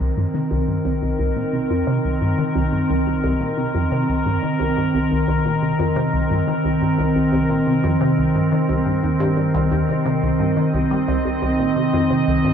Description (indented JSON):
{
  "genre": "ambient, sequencer-driven space music",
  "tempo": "88 BPM",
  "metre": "4/4",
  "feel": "straight",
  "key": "C minor",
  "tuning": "A4 = 440 Hz",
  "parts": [
    { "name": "evolving wavetable pad", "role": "sustained chords", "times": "0.0-12.5 s", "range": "Eb3 to Eb5", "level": "-19 LUFS", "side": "equal", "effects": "chorus, built-in reverb" },
    { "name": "resonant blip pluck", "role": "riff", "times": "0.0-12.5 s", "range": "C2 to G3", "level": "-22 LUFS", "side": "equal", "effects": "phaser, lush chorus, ping-pong delay" }
  ],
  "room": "wet huge ambient reverb, RT60 8.2 s",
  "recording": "none",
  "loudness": "-17 LUFS",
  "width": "side -8 dB against mid",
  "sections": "0.0-12.5 A section",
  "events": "filter sweep on synth arpeggio sound 0.0-12.5",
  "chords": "0.0 Cm7"
}